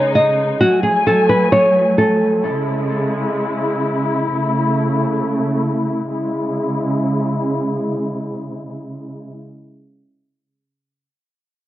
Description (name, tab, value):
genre	hip hop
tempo	free time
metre	none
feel	none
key	C# minor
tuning	A4 = 438 Hz
part	nylon-string guitar	melody	0.0-2.4 s	F#4 to D#5	-14 LUFS	equal	low-pass filter, tape echo
part	muted studio string section	sustained chords	0.0-9.3 s	C#3 to G#5	-18 LUFS	equal	low-pass filter
room	small room ambience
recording	dry, gritty hardware recording, cassette tape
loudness	-15 LUFS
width	side -14 dB against mid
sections	0.0-6.1 A section; 6.1-9.8 B section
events	filter sweep 0.0-6.1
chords	0.0 C#sus2; 0.6 F#madd9; 2.4 E6; 4.3 A; 6.1 C#m